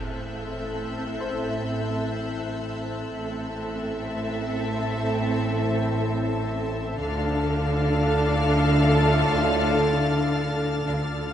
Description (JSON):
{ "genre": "cinematic", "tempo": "62 BPM", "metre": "4/4", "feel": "straight", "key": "A minor", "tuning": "A4 = 439 Hz", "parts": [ { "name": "warm studio violin section", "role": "melody", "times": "0.0-11.3 s", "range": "E5 to F5", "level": "-33 LUFS", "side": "left 4 dB", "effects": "none" }, { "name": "dark studio violin section", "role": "second line", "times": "0.0-11.3 s", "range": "A4", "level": "-30 LUFS", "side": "equal", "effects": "none" }, { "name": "dark studio viola section", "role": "accompaniment", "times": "0.0-11.3 s", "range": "C4 to D4", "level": "-31 LUFS", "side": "equal", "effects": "none" }, { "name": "dark trombone section", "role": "sustained chords", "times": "0.0-11.3 s", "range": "A2 to A3", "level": "-34 LUFS", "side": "right 4 dB", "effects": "none" }, { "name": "shimmering ambient pad", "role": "sustained chords", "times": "0.0-11.3 s", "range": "A4 to F5", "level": "-38 LUFS", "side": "left 1 dB", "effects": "chorus, built-in reverb, phaser" }, { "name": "warm French horn section", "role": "sustained chords", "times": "0.0-11.3 s", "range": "C4 to F4", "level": "-34 LUFS", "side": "left 5 dB", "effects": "none" }, { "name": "warm studio cello section", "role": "bass", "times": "0.0-11.3 s", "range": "A2 to D3", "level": "-29 LUFS", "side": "right 1 dB", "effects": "none" }, { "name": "warm studio double bass section", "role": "bass", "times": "0.0-11.3 s", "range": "A1 to D2", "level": "-29 LUFS", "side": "right 1 dB", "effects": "none" }, { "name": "warm studio violin section", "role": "texture", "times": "0.0-11.3 s", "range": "E6 to A6", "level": "-38 LUFS", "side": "left 4 dB", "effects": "none" }, { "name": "clear concert grand piano", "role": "texture", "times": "1.2-7.0 s", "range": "C5", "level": "-40 LUFS", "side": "left 5 dB", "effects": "none" } ], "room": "moderate scoring stage reverb, RT60 1.7 s", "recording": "nothing above 10.5 kHz", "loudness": "-22 LUFS", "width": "side -10 dB against mid", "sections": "0.0-11.3 A section", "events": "none", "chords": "0.0 Am; 7.0 Dm" }